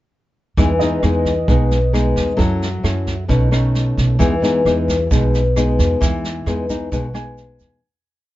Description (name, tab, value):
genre	bossa nova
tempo	132 BPM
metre	4/4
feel	straight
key	E major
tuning	A4 = 440 Hz
part	nylon-string guitar	accompaniment	0.6-7.8 s	B2 to A4	-18 LUFS	left 2 dB	none
part	upright bass	bass	0.6-7.8 s	B1 to F#2	-18 LUFS	right 1 dB	none
part	jazz brush drum kit	drums	0.6-7.7 s	kick drum, rim click, snare drum	-23 LUFS	right 1 dB	none
part	clear concert grand piano	accompaniment	0.8-2.4, 7.1-7.8 s	D#5 to G#5	-29 LUFS	right 7 dB	none
part	egg shaker	percussion	4.2-7.8 s	none	-38 LUFS	right 9 dB	none
room	little or no reverb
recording	dark, warm production, nothing above 7.7 kHz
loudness	-15 LUFS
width	side -16 dB against mid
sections	0.6-7.8 A section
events	fade-out 6.0-7.8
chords	0.6 Emaj7; 2.4 F#m7; 3.3 B9; 4.2 Emaj7